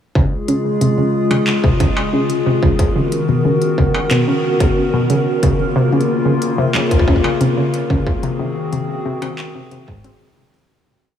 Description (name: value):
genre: IDM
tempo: 91 BPM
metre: 4/4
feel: straight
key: Db major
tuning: A4 = 441 Hz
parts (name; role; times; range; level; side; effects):
- warbly tape-like pad; sustained chords; 0.3-10.7 s; Db3 to Bb4; -18 LUFS; left 2 dB; chorus, built-in reverb
- warbly dusty pluck; arpeggios; 0.2-10.5 s; Ab2 to C4; -18 LUFS; equal; chorus, analog delay
- electronic kick drum; drums; 0.2-10.0 s; none; -17 LUFS; equal; distortion
- industrial drum kit; drums; 0.5-10.7 s; handclaps, hi-hat, struck metal; -25 LUFS; equal; analog delay
room: moderate huge ambient reverb, RT60 8.1 s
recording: dreamy mix soaked in reverb, small room ambience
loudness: -14 LUFS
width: side -9 dB against mid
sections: 0.2-10.7 groove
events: fade-out 7.2-10.7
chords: 0.2 Db; 2.8 Cbmaj7; 5.4 Bbm; 8.1 Ab7